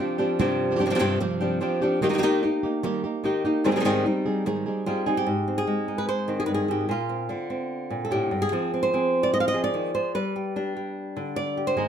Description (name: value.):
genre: flamenco.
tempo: 148 BPM.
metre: 4/4.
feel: straight.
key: unclear.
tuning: A4 = 438 Hz.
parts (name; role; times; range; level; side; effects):
flamenco guitar; melody; 0.0-11.9 s; G2 to F5; -23 LUFS; equal; slapback echo, plate reverb.
flamenco guitar; stabs; 0.0-5.3, 11.8-11.9 s; G2 to Ab4; -28 LUFS; right 3 dB; none.
room: moderate studio reverb, RT60 0.8 s.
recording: none.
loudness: -23 LUFS.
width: side -8 dB against mid.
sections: 0.0-5.3 A section; 5.3-11.9 B section.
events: none.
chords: 0.0 G7sus4; 2.0 Eb; 3.6 Abmaj7; 5.3 Ab; 6.9 Bbadd9; 8.5 Fm; 10.2 G.